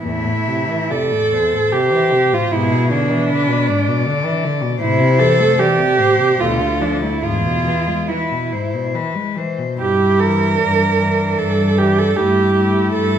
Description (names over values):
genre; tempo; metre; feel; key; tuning
classical, lyrical piece for cello ensemble; 66-80 BPM; 3/4; rubato; A minor; A4 = 437 Hz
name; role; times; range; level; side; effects
warm cello; melody; 0.0-13.2 s; D4 to E5; -23 LUFS; left 5 dB; none
dark cello; second line; 0.0-13.2 s; D4 to Bb4; -17 LUFS; right 4 dB; none
dark cello; accompaniment; 0.0-13.2 s; E2 to A3; -22 LUFS; left 4 dB; none
warm cello; bass; 0.0-13.2 s; D2 to C3; -20 LUFS; equal; none
room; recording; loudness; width
wet recital hall reverb, RT60 1.5 s; minimal, uncompressed stereo recording; -14 LUFS; side -9 dB against mid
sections
0.0-13.2 A section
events
none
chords
0.0 Am/E; 2.5 E7/G#; 4.8 Am; 6.4 Bm7b5/D; 7.2 E; 9.8 Em7b5/G; 12.2 A7(no3)/G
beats
| 0.03 0.91 1.72 | 2.51 3.29 4.05 | 4.82 5.59 6.40 | 7.24 8.10 8.95 | 9.80 10.60 11.39 | 12.17 12.94